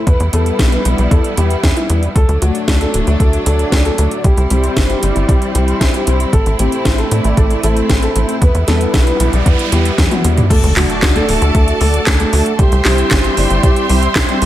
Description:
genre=italo disco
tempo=115 BPM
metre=4/4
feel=straight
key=unclear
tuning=A4 = 440 Hz
part: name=bright studio string section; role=sustained chords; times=0.0-14.5 s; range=F#3 to C6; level=-22 LUFS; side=right 2 dB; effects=none
part: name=mellow synth brass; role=stabs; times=0.0-14.5 s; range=G3 to F#5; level=-20 LUFS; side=left 2 dB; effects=chorus
part: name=dark concert grand piano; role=melody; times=0.1-14.5 s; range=F#3 to B4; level=-20 LUFS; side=equal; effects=tape echo
part: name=tight sequencer bass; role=bass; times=0.1-14.5 s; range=D1 to A2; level=-15 LUFS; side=equal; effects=tube saturation
part: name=electronic kick drum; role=drums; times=0.1-14.3 s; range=none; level=-14 LUFS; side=equal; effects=none
part: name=house drum kit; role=drums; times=0.1-14.5 s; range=crash cymbal, handclaps, hi-hat, snare drum, toms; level=-18 LUFS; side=equal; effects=gated reverb
part: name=noise sweep and impact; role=sound effects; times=8.9-12.6 s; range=none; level=-24 LUFS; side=right 1 dB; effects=none
room=little or no reverb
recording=none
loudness=-11 LUFS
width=side -13 dB against mid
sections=0.0-10.5 A section; 10.5-14.5 B section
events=filter sweep on analog polysynth 0.0-10.5; noise sweep 8.9-10.5; drum fill 10.0-10.5; impact 10.5-12.6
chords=0.1 Em; 2.2 D; 4.2 C; 6.3 Am; 8.4 Em; 10.5 D; 12.6 C

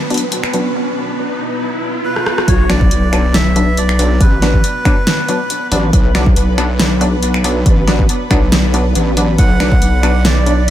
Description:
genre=deep dubstep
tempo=139 BPM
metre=4/4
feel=swing 54% on 16ths, half-time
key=B minor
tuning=A4 = 440 Hz
part: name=granular cloud pad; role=sustained chords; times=0.0-10.7 s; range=B3 to B4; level=-23 LUFS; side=equal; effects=built-in reverb
part: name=riser and sub drop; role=sound effects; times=0.0-4.2 s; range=none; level=-22 LUFS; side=right 1 dB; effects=none
part: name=filtered dub chord stab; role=stabs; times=0.1-10.6 s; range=F#3 to D4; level=-20 LUFS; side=left 1 dB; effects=chorus, dub echo
part: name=deep house drum kit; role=drums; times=0.1-10.7 s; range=finger snaps, hi-hat, rim click, snare drum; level=-19 LUFS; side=equal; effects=none
part: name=melodica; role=melody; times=2.0-5.7, 9.4-10.7 s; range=B4 to F#5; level=-22 LUFS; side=right 2 dB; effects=dub echo
part: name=wobble bass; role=bass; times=2.5-10.7 s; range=A1 to B1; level=-14 LUFS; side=equal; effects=chorus, tube saturation
part: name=electronic kick drum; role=drums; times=2.5-9.8 s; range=none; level=-12 LUFS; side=equal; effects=high-pass filter on kick, high-pass filter on room
part: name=flickering grainy texture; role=texture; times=9.8-10.7 s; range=D5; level=-25 LUFS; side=right 5 dB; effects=built-in reverb
room=digital ambience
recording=none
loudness=-11 LUFS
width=side -12 dB against mid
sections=0.0-2.5 A section; 2.5-10.7 B section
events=build-up 0.0-2.5; riser 0.0-2.5; drum fill 2.2-2.5; drop 2.5-10.7; impact 2.5-4.2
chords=0.0 Bm

